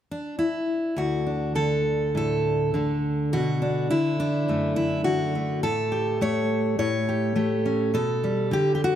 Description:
folk, solo fingerstyle acoustic guitar; 103 BPM; 4/4; rubato; D major; A4 = 440 Hz
fingerpicked steel-string acoustic guitar; solo; 0.1-9.0 s; D2 to C#5; -22 LUFS; equal
moderate concert hall reverb, RT60 2.1 s; -22 LUFS; side -10 dB against mid
1.0-9.0 A section
0.0 N.C.; 1.0 D; 3.3 Bm7; 5.6 A7; 8.0 G/B

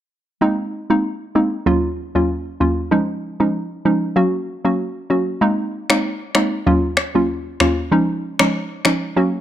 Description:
afrobeats; 96 BPM; 4/4; swing 55% on 16ths; Ab mixolydian; A4 = 440 Hz
hollow square pluck; accompaniment; 0.4-9.4 s; Eb2 to Gb4; -17 LUFS; equal; chorus
electronic finger snaps and rim click; drums; 5.9-9.0 s; -18 LUFS; left 2 dB
light reverb; -17 LUFS; side -11 dB against mid
0.4-9.4 A section
0.4 Abadd9; 1.7 Ebm7; 2.9 Dbadd9/F; 4.2 Gb; 5.4 Abadd9; 6.7 Ebm7; 7.9 Dbadd9/F

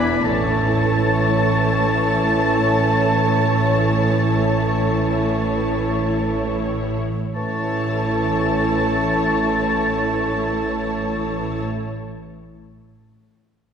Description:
classical, slow romantic movement for symphony orchestra; free time; A major; A4 = 441 Hz
rich symphonic violin section; melody; 0.0-11.6 s; C#5 to D5; -29 LUFS; left 4 dB
clear clarinet; second line; 0.0-11.6 s; A4 to B4; -30 LUFS; right 3 dB
clear oboe; second line; 0.0-11.6 s; A5 to B5; -24 LUFS; equal
flute section; second line; 0.0-11.6 s; C#6 to D6; -32 LUFS; left 1 dB
rich symphonic violin section; second line; 0.0-11.6 s; A5 to B5; -30 LUFS; left 1 dB
mellow bassoon; accompaniment; 0.0-11.6 s; E3; -28 LUFS; right 2 dB
warm symphonic viola section; accompaniment; 0.0-11.6 s; A3 to E4; -28 LUFS; right 1 dB
dark French horn section; sustained chords; 0.0-11.6 s; E3 to D4; -27 LUFS; left 1 dB
rich symphonic cello section; bass; 0.0-11.6 s; E2 to A2; -25 LUFS; right 2 dB
rich symphonic double bass section; bass; 0.0-11.6 s; E1 to A1; -25 LUFS; right 2 dB
wet concert hall reverb, RT60 2.1 s; recorded in a church or concert hall; -17 LUFS; side -7 dB against mid
0.0-7.4 A section; 7.4-13.7 B section
slowing down 0.0-7.4
0.3 A

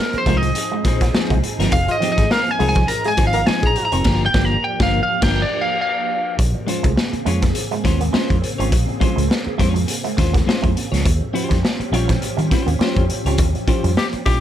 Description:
funk; 103 BPM; 4/4; swing 56% on 16ths; A4 = 444 Hz
lightly driven lead guitar; melody; 0.0-6.4 s; Bb4 to Bb5; -20 LUFS; equal
clean electric guitar; accompaniment; 0.0-14.4 s; F3 to Db5; -24 LUFS; left 4 dB
soft string machine; sustained chords; 0.0-14.4 s; Db3 to Ab4; -28 LUFS; equal; phaser, ensemble chorus
vintage muted fingered electric bass; bass; 0.1-14.4 s; F1 to Eb3; -20 LUFS; equal
raw garage drum kit; drums; 0.1-14.4 s; crash cymbal, hi-hat, kick drum, snare drum; -20 LUFS; equal
electric guitar with an envelope filter; riff; 0.3-14.4 s; F3 to C4; -27 LUFS; right 10 dB; wide subtle chorus
breathy tenor saxophone; second line; 1.9-3.9, 14.0-14.4 s; F4 to Bb4; -24 LUFS; left 5 dB
studio reverb; -16 LUFS; side -11 dB against mid
0.0-6.4 A section; 6.4-14.4 B section
lead electric guitar solo 0.0-6.4; band accent 4.1-6.4, 13.4-14.4
0.0 Fm7; 4.1 Gm7; 6.4 Bbm9; 11.1 Eb13

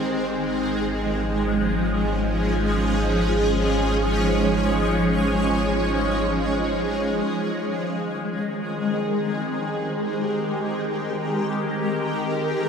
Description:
ambient; free time; Ab major; A4 = 440 Hz
shimmering ambient pad; sustained chords; 0.0-12.7 s; Eb3 to Db5; -22 LUFS; equal; chorus, built-in reverb, phaser
warm sub bass; bass; 0.0-7.2 s; Ab1; -27 LUFS; equal
analog drone; drone; 0.0-7.3 s; Ab3 to Eb4; -31 LUFS; equal; chorus
wet cathedral reverb, RT60 6.2 s; in a vast, echoing space; -21 LUFS; side -6 dB against mid
0.0-7.3 A section; 7.3-12.7 B section
0.0 Db/Ab; 7.3 Abmaj9

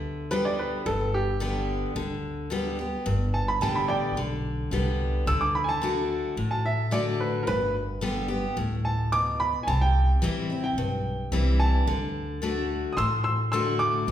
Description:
honky-tonk and classic country; 109 BPM; 4/4; straight; G major; A4 = 440 Hz
bright upright piano; melody; 0.0-14.1 s; G4 to E6; -28 LUFS; right 2 dB
picked steel-string acoustic guitar; accompaniment; 0.0-14.1 s; G2 to G4; -28 LUFS; left 2 dB
upright bass; bass; 0.0-14.1 s; G1 to D2; -29 LUFS; equal
wet recital hall reverb, RT60 1.3 s; recorded in a church or concert hall; -24 LUFS; side -11 dB against mid
0.0-14.1 A section
upright piano solo 0.0-14.1
0.0 G; 5.3 D; 7.5 G; 9.7 C; 11.9 D

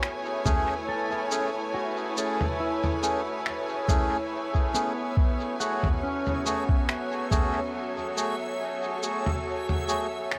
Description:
ambient dub; 70 BPM; 4/4; swing 55% on 16ths; F# minor; A4 = 441 Hz
muted studio string section; sustained chords; 0.0-10.4 s; F#3 to G#5; -34 LUFS; equal
pedal steel guitar; arpeggios; 0.0-9.9 s; B3 to F#5; -37 LUFS; equal; tape echo
lo-fi sampler-style drum kit; drums; 0.0-10.4 s; cabasa, finger snaps, toms; -34 LUFS; equal; overdrive, dub echo
backwards swelling texture; texture; 0.1-10.4 s; E5; -43 LUFS; equal; built-in reverb
melodica; stabs; 0.5-10.1 s; A3 to G#4; -34 LUFS; equal; dub echo
electronic kick drum; drums; 0.5-7.5 s; -27 LUFS; equal; overdrive
moderate huge ambient reverb, RT60 5.1 s; -28 LUFS; mono
0.0-10.4 A section
0.0 Amaj7; 5.2 F#madd9

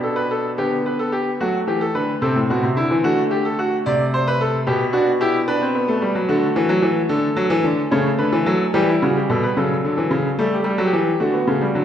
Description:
classical, baroque-style 3-part fugue for grand piano; 73 BPM (dotted quarters); 12/8; straight; G major; A4 = 440 Hz
bright concert grand piano; solo; 0.0-11.8 s; A2 to D5; -17 LUFS; equal
wet scoring stage reverb, RT60 1.6 s; recorded in a church or concert hall, lossy compression artefacts; -17 LUFS; side -9 dB against mid
0.0-11.8 A section
0.0 G/B; 1.4 F#dim; 3.0 D7; 4.7 G/B; 6.3 D; 7.9 C#dim; 9.6 A7/C#; 11.2 D

